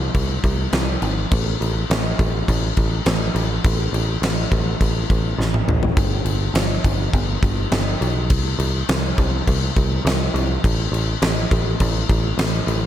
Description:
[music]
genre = hard rock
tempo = 103 BPM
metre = 4/4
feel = straight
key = unclear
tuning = A4 = 441 Hz
[part]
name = picked electric bass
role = bass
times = 0.0-12.9 s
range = G1 to B#1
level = -21 LUFS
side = equal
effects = none
[part]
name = huge arena drum kit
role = drums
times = 0.1-12.8 s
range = crash cymbal, kick drum, snare drum, toms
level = -20 LUFS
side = equal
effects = none
[sound]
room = little or no reverb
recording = none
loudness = -18 LUFS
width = side -11 dB against mid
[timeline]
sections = 0.0-12.9 A section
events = drum fill 5.4-6.0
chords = none

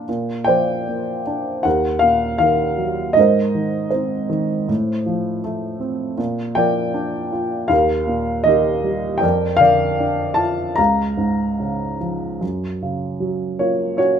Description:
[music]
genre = classical, lyrical solo piano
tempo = 72-81 BPM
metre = 4/4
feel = rubato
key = Bb major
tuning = A4 = 441 Hz
[part]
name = dark upright piano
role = solo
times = 0.0-14.2 s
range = Db2 to Bb5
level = -17 LUFS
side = equal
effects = none
[sound]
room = moderate studio reverb, RT60 0.8 s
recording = minimal, uncompressed stereo recording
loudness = -17 LUFS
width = side -8 dB against mid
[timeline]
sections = 0.1-12.4 A section; 12.4-14.2 B section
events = none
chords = 0.1 Bbadd9; 1.7 Ebmadd9; 3.2 Abadd9; 4.7 F7/A; 6.2 Bb; 7.7 Ebadd9; 9.2 Bb/F; 10.8 Db; 12.4 F#

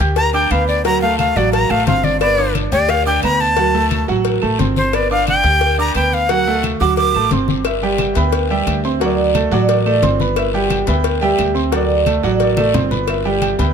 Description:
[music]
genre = latin, salsa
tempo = 176 BPM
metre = 4/4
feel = straight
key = G major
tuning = A4 = 444 Hz
[part]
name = bright concert grand piano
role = accompaniment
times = 0.0-13.7 s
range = F#3 to G6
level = -19 LUFS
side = right 5 dB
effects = none
[part]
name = upright bass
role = bass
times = 0.0-13.7 s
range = G1 to D2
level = -20 LUFS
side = left 1 dB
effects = none
[part]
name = congas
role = percussion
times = 0.0-13.7 s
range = none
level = -25 LUFS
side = left 5 dB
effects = none
[part]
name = cowbell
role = percussion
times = 0.0-13.7 s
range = none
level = -24 LUFS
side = left 8 dB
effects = none
[part]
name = guiro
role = percussion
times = 0.0-13.7 s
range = none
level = -30 LUFS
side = left 9 dB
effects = none
[part]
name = breathy bright jazz flute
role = melody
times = 0.2-7.3 s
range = C5 to D6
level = -17 LUFS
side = equal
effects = none
[part]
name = claves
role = percussion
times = 0.5-13.6 s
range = none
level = -30 LUFS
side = right 5 dB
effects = none
[part]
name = Celtic harp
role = melody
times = 7.7-13.7 s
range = F#4 to G5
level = -20 LUFS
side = right 2 dB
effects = none
[sound]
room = light reverb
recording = none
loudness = -13 LUFS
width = side -7 dB against mid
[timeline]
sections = 0.0-7.7 A section; 7.7-13.7 B section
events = flute solo 0.0-7.7; drum fill 12.6-13.1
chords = 0.0 G; 0.8 D7; 2.2 G; 3.6 D7; 4.9 G; 6.3 D7; 7.7 G6; 9.0 D7; 10.4 G6; 11.7 D7; 13.1 G6

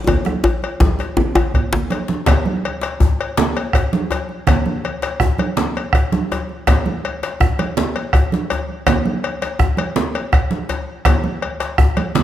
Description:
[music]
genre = west african traditional, West African drum ensemble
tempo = 109 BPM (dotted quarters)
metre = 12/8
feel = straight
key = none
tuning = none
[part]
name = bombo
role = percussion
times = 0.1-12.0 s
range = none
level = -19 LUFS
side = right 1 dB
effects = none
[part]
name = congas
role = percussion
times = 0.1-12.2 s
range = none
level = -22 LUFS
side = right 4 dB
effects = none
[part]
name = cowbell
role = percussion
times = 0.1-12.1 s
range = none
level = -25 LUFS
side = left 5 dB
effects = none
[part]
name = djembe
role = percussion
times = 0.1-12.2 s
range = none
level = -22 LUFS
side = left 4 dB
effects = none
[part]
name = djembe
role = percussion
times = 0.1-1.9 s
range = none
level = -18 LUFS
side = left 2 dB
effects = none
[sound]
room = moderate recital hall reverb, RT60 1.6 s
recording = close, detailed microphones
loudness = -16 LUFS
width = side -12 dB against mid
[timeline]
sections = 0.0-2.3 A section; 2.3-12.2 B section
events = drum fill 0.1-2.3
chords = none

